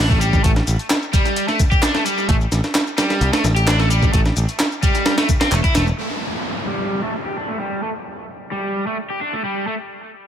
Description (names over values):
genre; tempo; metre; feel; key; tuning
breakbeat, breaks; 130 BPM; 4/4; straight; A minor; A4 = 441 Hz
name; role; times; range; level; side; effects
crunchy overdriven guitar; riff; 0.0-9.7 s; G3 to G4; -22 LUFS; equal; vintage 12-bit sampler grit, low-pass filter, dub echo
modern bright picked electric bass; bass; 0.0-5.9 s; E1 to C2; -18 LUFS; equal; none
breakbeat sampler-style drum kit; drums; 0.1-5.9 s; hi-hat, kick drum, snare drum; -18 LUFS; equal; small room ambience, dub echo
electronic shaker and handclaps; drums; 0.1-6.0 s; none; -28 LUFS; left 1 dB; overdrive, small room ambience, dub echo
downlifter; sound effects; 6.0-9.7 s; none; -28 LUFS; equal; none
room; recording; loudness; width
light reverb; echo-heavy mix; -16 LUFS; side -9 dB against mid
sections
0.0-6.0 A section; 6.0-10.3 B section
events
filter sweep on overdriven electric guitar 6.0-10.3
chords
0.0 A7(no3); 6.0 A5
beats
| 0.44 0.90 1.36 1.83 | 2.29 2.75 3.21 3.67 | 4.13 4.60 5.06 5.52 | 5.98 6.44 6.90 7.37 | 7.83 8.29 8.75 9.21 | 9.67